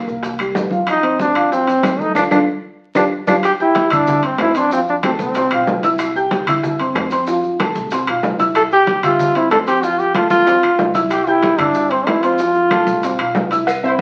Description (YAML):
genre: latin, salsa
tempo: 188 BPM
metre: 4/4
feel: straight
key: C major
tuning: A4 = 440 Hz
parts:
  - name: dark grand piano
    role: accompaniment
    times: 0.1-14.0 s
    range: F3 to G6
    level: -21 LUFS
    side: equal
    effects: none
  - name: upright bass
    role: bass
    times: 0.1-14.0 s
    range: G1 to G2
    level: -36 LUFS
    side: equal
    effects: none
  - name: bongos and cowbell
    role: percussion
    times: 0.1-13.8 s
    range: none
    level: -30 LUFS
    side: equal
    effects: none
  - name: congas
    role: percussion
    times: 0.1-14.0 s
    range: none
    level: -28 LUFS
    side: equal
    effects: none
  - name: maracas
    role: percussion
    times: 0.1-14.0 s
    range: none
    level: -42 LUFS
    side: equal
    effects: none
  - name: timbales and agogo bells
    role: percussion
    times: 0.2-14.0 s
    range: none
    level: -27 LUFS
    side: equal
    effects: none
  - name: claves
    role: percussion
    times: 0.4-13.8 s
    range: none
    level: -31 LUFS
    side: equal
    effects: none
  - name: bright trombone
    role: melody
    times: 0.9-5.8, 8.6-13.4 s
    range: C4 to A4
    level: -18 LUFS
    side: equal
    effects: none
  - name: dark trumpet section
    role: melody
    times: 13.8-14.0 s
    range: E4 to C5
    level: -21 LUFS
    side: equal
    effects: none
room: wet studio reverb, RT60 0.7 s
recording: very old 78 rpm record, vinyl crackle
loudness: -16 LUFS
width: mono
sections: 0.0-3.4 A section; 3.4-13.7 B section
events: band accent 2.2-3.4; drum fill 2.8-3.4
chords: 0.2 C5; 0.9 F5; 2.2 Dm; 2.8 G5; 3.4 C; 4.7 F; 6.0 C; 7.3 F; 8.6 C; 9.8 F; 11.1 C; 12.4 F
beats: 0.23 0.55 | 0.87 1.19 1.51 1.83 | 2.15 2.48 2.79 3.12 | 3.44 3.76 4.08 4.40 | 4.72 5.04 5.36 5.68 | 6.00 6.32 6.63 6.96 | 7.28 7.59 7.91 8.23 | 8.55 8.87 9.19 9.51 | 9.83 10.15 10.47 10.79 | 11.11 11.43 11.75 12.07 | 12.39 12.71 13.03 13.35 | 13.67 13.99